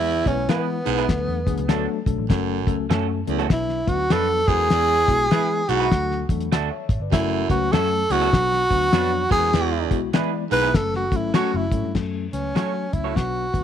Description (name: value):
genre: uptempo 1960s-style soul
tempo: 99 BPM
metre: 4/4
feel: swing 62% on 8ths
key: F# minor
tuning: A4 = 440 Hz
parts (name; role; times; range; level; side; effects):
- breathy tenor saxophone; melody; 0.0-13.6 s; B3 to B4; -22 LUFS; right 1 dB; none
- mellow tine electric piano; accompaniment; 0.0-13.6 s; F#3 to F#5; -28 LUFS; left 12 dB; medium stereo tremolo
- growling baritone saxophone; riff; 0.0-10.7 s; E2 to G#2; -28 LUFS; right 15 dB; none
- vintage muted picked electric bass; bass; 0.0-13.6 s; F#1 to F#3; -28 LUFS; right 1 dB; none
- cloth-damped thuddy drum kit; drums; 0.3-13.6 s; crash cymbal, hi-hat, kick drum, snare drum; -22 LUFS; left 2 dB; none
- electric guitar through a small old amp; stabs; 0.5-13.1 s; A3 to C#5; -29 LUFS; right 15 dB; none
room: light reverb, studio reverb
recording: 1960s-style stereo with parts hard left and right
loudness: -19 LUFS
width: side -9 dB against mid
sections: 0.0-12.0 A section; 12.0-13.6 B section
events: tenor saxophone solo 0.0-12.0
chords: 0.0 E; 1.1 D; 2.3 F#m; 3.5 Bm; 4.4 E; 5.9 D; 7.1 F#m; 8.3 Bm; 9.2 E; 10.7 F#m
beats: 0.48 1.09 1.69 | 2.29 2.90 3.50 4.11 | 4.71 5.31 5.92 6.52 | 7.12 7.73 8.33 8.93 | 9.54 10.14 10.74 11.35 | 11.95 12.56 13.16